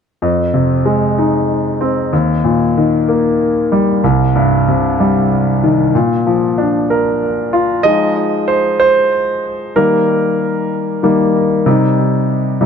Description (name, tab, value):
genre	pop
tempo	63 BPM (dotted quarters)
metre	6/8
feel	straight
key	unclear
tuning	A4 = 440 Hz
part	bright concert grand piano	solo	0.2-12.7 s	C2 to Eb5	-12 LUFS	equal	tape echo
room	moderate plate reverb, RT60 2.9 s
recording	dark, warm production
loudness	-12 LUFS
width	side -7 dB against mid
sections	0.2-7.8 A section; 7.8-12.7 B section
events	grand piano solo 7.8-12.7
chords	0.2 Fm7; 2.1 Eb; 4.0 Cm; 5.9 Bb; 7.8 Fm7; 9.8 Eb; 11.7 Cm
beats	| 0.21 1.17 | 2.12 3.08 | 4.04 4.99 | 5.94 6.90 | 7.85 8.80 | 9.75 10.71 | 11.66 12.61